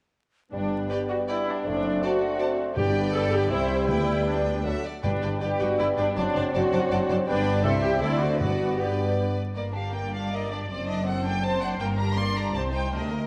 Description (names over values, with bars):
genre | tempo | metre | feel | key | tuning
quick classical-period movement for symphony orchestra | 160 BPM | 3/4 | rubato | G major, G minor from 9.6 s | A4 = 445 Hz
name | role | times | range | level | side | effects
mellow hollow concert flute | second line | 0.5-9.4 s | C5 to E5 | -34 LUFS | equal | none
warm clarinet | second line | 0.5-9.4 s | A4 to C5 | -38 LUFS | equal | none
mellow bassoon | accompaniment | 0.5-9.4 s | F#3 to B3 | -34 LUFS | equal | none
rich symphonic viola section | accompaniment | 0.5-13.3 s | D4 to D5 | -32 LUFS | equal | none
warm French horn section | sustained chords | 0.5-9.4 s | A3 to G4 | -35 LUFS | equal | none
clear chamber double bass section | bass | 0.5-13.3 s | F#1 to D2 | -34 LUFS | equal | none
rich chamber cello section | bass | 0.5-13.3 s | C2 to D3 | -34 LUFS | equal | none
rich chamber violin section | melody | 0.9-13.3 s | D5 to C6 | -38 LUFS | equal | none
rich chamber violin section | second line | 0.9-13.3 s | Bb3 to G5 | -36 LUFS | equal | none
timpani | percussion | 2.8-5.6, 8.4-8.9 s | G2 to D3 | -36 LUFS | equal | none
room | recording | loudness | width
wet scoring stage reverb, RT60 1.6 s | vinyl crackle | -26 LUFS | mono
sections
0.5-9.6 A section; 9.6-13.3 B section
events
none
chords
0.5 G; 1.7 D7/F#; 2.8 G; 3.5 C; 3.9 G/D; 4.7 D; 5.0 G; 6.2 D7/F#; 7.3 G; 7.6 C; 8.0 D7; 8.4 G; 9.6 Gm; 10.7 D7/F#; 11.8 Gm; 12.6 Cm